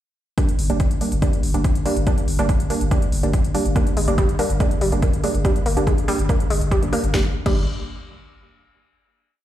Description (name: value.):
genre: driving peak-time techno.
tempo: 142 BPM.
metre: 4/4.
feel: straight.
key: G minor.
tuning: A4 = 440 Hz.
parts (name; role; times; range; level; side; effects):
filtered dub chord stab; stabs; 0.4-7.6 s; G3 to D4; -25 LUFS; right 2 dB; chorus, sidechain pumping, ping-pong delay.
electronic kick drum; drums; 0.4-7.5 s; none; -20 LUFS; equal; none.
techno drum kit; drums; 0.4-7.5 s; crash cymbal, hi-hat, snare drum; -32 LUFS; left 1 dB; sidechain pumping on hats, sidechain pumping on cymbals.
saturated sub bass; bass; 0.6-7.7 s; G1; -23 LUFS; equal; sidechain pumping, low-pass filter.
analog pluck; riff; 3.8-7.7 s; G3 to Bb3; -25 LUFS; equal; chorus, overdrive, sidechain pumping, dub echo.
room: light reverb.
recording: played on a big sound system in a bare room, large studio reverb.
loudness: -18 LUFS.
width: side -12 dB against mid.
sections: 0.4-7.1 groove; 7.1-8.8 final chord.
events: none.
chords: 0.4 Gm.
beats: | 0.38 0.80 1.22 1.65 | 2.07 2.49 2.91 3.33 | 3.76 4.18 4.60 5.03 | 5.45 5.87 6.29 6.71 | 7.14 7.56.